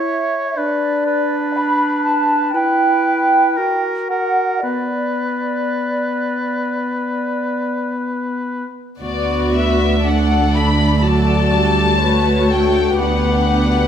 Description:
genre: classical, slow romantic movement for symphony orchestra.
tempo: 53-61 BPM.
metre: 4/4.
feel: rubato.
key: B minor, D major from 9.0 s.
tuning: A4 = 440 Hz.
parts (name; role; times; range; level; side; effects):
mellow hollow flute section; second line; 0.0-7.9 s; D5 to B5; -19 LUFS; right 1 dB; none.
warm clarinet; second line; 0.0-8.7 s; B3 to F#4; -22 LUFS; left 2 dB; none.
warm oboe; second line; 0.0-8.7 s; A#4 to C#5; -22 LUFS; equal; none.
dark studio violin section; melody; 9.0-13.9 s; D5 to B5; -20 LUFS; left 5 dB; none.
warm symphonic violin section; second line; 9.0-13.9 s; F#4 to D5; -22 LUFS; left 4 dB; none.
dark symphonic viola section; accompaniment; 9.0-13.9 s; F#3 to F#4; -18 LUFS; equal; none.
warm symphonic cello section; bass; 9.0-13.9 s; D2; -21 LUFS; right 2 dB; none.
warm symphonic double bass section; bass; 9.0-13.9 s; D2; -19 LUFS; right 3 dB; none.
room: moderate recital hall reverb, RT60 1.3 s.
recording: none.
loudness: -15 LUFS.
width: side -8 dB against mid.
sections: 0.0-9.0 A section; 9.0-13.9 B section.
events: none.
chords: 0.0 E5; 0.6 Bm/D; 2.5 Em; 3.6 F#; 4.6 N.C.; 9.0 D; 13.0 Em7/D (rootless).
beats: | 0.55 1.54 2.53 3.56 | 4.61 5.68 6.79 7.91 | 9.01 10.03 11.03 12.02 | 13.01.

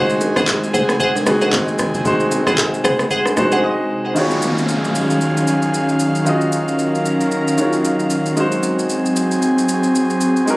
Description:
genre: amapiano.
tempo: 114 BPM.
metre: 4/4.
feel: swing 58% on 16ths.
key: Eb dorian.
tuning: A4 = 440 Hz.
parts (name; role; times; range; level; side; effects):
clear concert grand piano; accompaniment; 0.0-10.6 s; Eb3 to Eb5; -20 LUFS; equal; none.
airy breathy pad; sustained chords; 0.0-10.6 s; C3 to F5; -18 LUFS; equal; chorus.
glassy wavetable pluck; stabs; 0.0-3.6 s; Ab4 to Gb5; -20 LUFS; equal; chorus, digital delay.
hollow log drum bass; bass; 0.0-3.6 s; Gb1 to Bb1; -27 LUFS; equal; none.
booming analog drum machine; drums; 0.1-10.6 s; handclaps, kick drum, rim click, shaker; -24 LUFS; equal; overdrive.
bongos and congas; percussion; 0.2-3.6 s; none; -25 LUFS; equal; none.
downlifter; sound effects; 4.2-8.4 s; none; -25 LUFS; left 1 dB; none.
room: light reverb.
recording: recorded on a phone in the room, club reverb, compression.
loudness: -15 LUFS.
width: side -21 dB against mid.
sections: 0.0-4.2 A section; 4.2-10.6 B section.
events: drop 0.0-4.2; grand piano fill 3.4-4.2; break 3.6-4.2.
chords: 0.0 Ab7; 4.2 Ebm11; 8.4 Ab7.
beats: 0.47 1.00 1.53 | 2.05 2.58 3.11 3.63 | 4.16 4.69 5.21 5.74 | 6.26 6.79 7.32 7.84 | 8.37 8.90 9.42 9.95 | 10.47.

